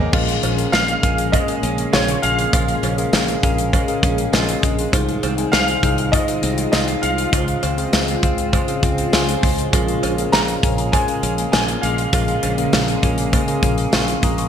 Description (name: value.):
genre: 1980s-style pop.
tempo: 100 BPM.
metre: 4/4.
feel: straight.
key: unclear.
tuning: A4 = 442 Hz.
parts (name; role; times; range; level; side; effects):
mellow tine electric piano; accompaniment; 0.0-14.5 s; Bb2 to Eb6; -23 LUFS; left 2 dB; medium stereo tremolo.
granular cloud pad; sustained chords; 0.0-14.5 s; Db3 to C5; -27 LUFS; right 1 dB; built-in reverb, phaser.
direct-recorded clean electric guitar; riff; 0.0-14.5 s; Eb3 to F4; -27 LUFS; right 4 dB; lush chorus, ping-pong delay.
fretless electric bass; bass; 0.0-14.4 s; Bb1 to Db2; -24 LUFS; equal; analog chorus.
modern studio drum kit; drums; 0.1-14.5 s; crash cymbal, hi-hat, kick drum, snare drum, tambourine; -20 LUFS; equal; gated reverb.
cowbell; percussion; 0.1-14.1 s; none; -33 LUFS; right 8 dB; none.
warm baby grand piano; melody; 0.7-12.4 s; Db5 to Bb5; -23 LUFS; equal; ensemble chorus, ping-pong delay.
room: moderate plate reverb, RT60 2.1 s.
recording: bright 1980s-style digital production.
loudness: -16 LUFS.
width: side -8 dB against mid.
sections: 0.1-14.5 A section.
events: none.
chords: 0.1 Bbm7; 4.9 Fm7/C; 7.3 Dbmaj7; 9.7 Bbm7.